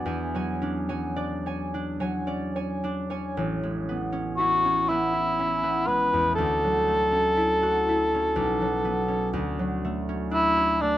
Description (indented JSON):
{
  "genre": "classical, impressionist duo for cor anglais and harp",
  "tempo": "54-62 BPM",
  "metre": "3/4",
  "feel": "rubato",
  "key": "A major",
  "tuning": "A4 = 440 Hz",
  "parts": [
    { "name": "concert harp", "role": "accompaniment", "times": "0.0-11.0 s", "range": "A1 to G#5", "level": "-27 LUFS", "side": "equal", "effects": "none" },
    { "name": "mellow cor anglais", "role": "melody", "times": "4.4-11.0 s", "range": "D4 to B4", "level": "-22 LUFS", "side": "equal", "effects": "none" }
  ],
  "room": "light reverb",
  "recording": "close, detailed microphones",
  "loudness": "-23 LUFS",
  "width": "side -13 dB against mid",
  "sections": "0.0-3.4 A section; 3.4-11.0 B section",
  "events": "none",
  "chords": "0.1 E13; 3.4 Amaj9; 6.4 Dmaj9; 8.4 B9sus4; 9.3 Dmaj7"
}